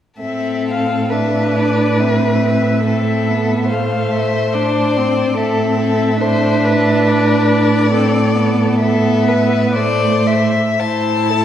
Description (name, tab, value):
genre	classical, slow romantic movement for string quartet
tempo	54-73 BPM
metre	3/4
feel	rubato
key	A minor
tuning	A4 = 440 Hz
part	rich violin	melody	0.2-11.4 s	D5 to A5	-20 LUFS	left 4 dB	none
part	warm violin	second line	0.2-11.4 s	A4 to C5	-20 LUFS	left 2 dB	none
part	warm viola	accompaniment	0.2-11.4 s	A3 to E4	-19 LUFS	equal	none
part	warm cello	bass	0.2-11.4 s	A2	-18 LUFS	right 2 dB	none
room	wet scoring stage reverb, RT60 1.8 s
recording	heard from further back in the room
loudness	-13 LUFS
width	side -10 dB against mid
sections	0.2-10.8 A section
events	none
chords	0.2 Am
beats	| 0.20 1.10 1.98 | 2.85 3.70 4.54 | 5.37 6.20 7.07 | 7.93 8.82 9.76 | 10.81